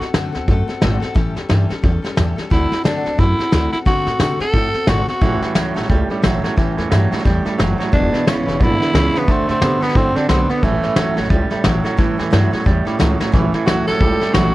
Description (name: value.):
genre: rockabilly.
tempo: 177 BPM.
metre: 4/4.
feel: swing 60% on 8ths.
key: A mixolydian.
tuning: A4 = 441 Hz.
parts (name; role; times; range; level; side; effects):
raspy tenor saxophone; melody; 0.0-0.1, 2.5-5.5, 7.9-11.3, 13.7-14.5 s; A3 to A4; -20 LUFS; equal; none.
picked steel-string acoustic guitar; accompaniment; 0.0-14.5 s; A2 to B4; -24 LUFS; left 3 dB; none.
upright bass; bass; 0.0-14.5 s; E1 to C3; -20 LUFS; equal; none.
vintage brush drum kit; drums; 0.0-14.4 s; hi-hat, kick drum, snare drum; -19 LUFS; equal; none.
twangy electric guitar; riff; 5.2-14.5 s; E2 to C4; -20 LUFS; right 4 dB; spring reverb.
room: light reverb.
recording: cassette tape.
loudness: -14 LUFS.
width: side -17 dB against mid.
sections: 0.0-13.3 A section; 13.3-14.5 B section.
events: drum fill 13.2; tenor saxophone solo 13.3-14.5.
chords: 0.0 D7; 1.2 A7; 2.5 D7; 5.2 A7; 7.9 E7; 9.3 D7; 10.6 A7.